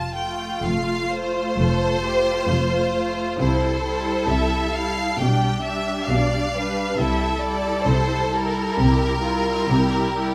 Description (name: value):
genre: classical, slow romantic movement for string orchestra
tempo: 66 BPM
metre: 4/4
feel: rubato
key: F major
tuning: A4 = 438 Hz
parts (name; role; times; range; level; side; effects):
- rich studio violin section; melody; 0.0-10.3 s; Bb4 to A5; -27 LUFS; equal; none
- rich studio violin section; second line; 0.0-10.3 s; F4 to D5; -30 LUFS; equal; none
- rich studio cello section; bass; 0.0-10.3 s; F2 to C3; -30 LUFS; equal; none
- warm studio double bass section; bass; 0.0-10.3 s; F1 to C2; -28 LUFS; equal; none
- warm studio viola section; accompaniment; 0.2-10.3 s; G3 to F4; -29 LUFS; equal; none
room: moderate concert hall reverb, RT60 1.7 s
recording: close, detailed microphones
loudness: -22 LUFS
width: mono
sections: 0.0-10.3 A section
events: none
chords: 0.0 F; 3.4 C; 5.2 G/B; 7.0 C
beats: 0.64 1.59 2.49 | 3.40 4.29 5.20 6.09 | 6.98 7.87 8.77 9.68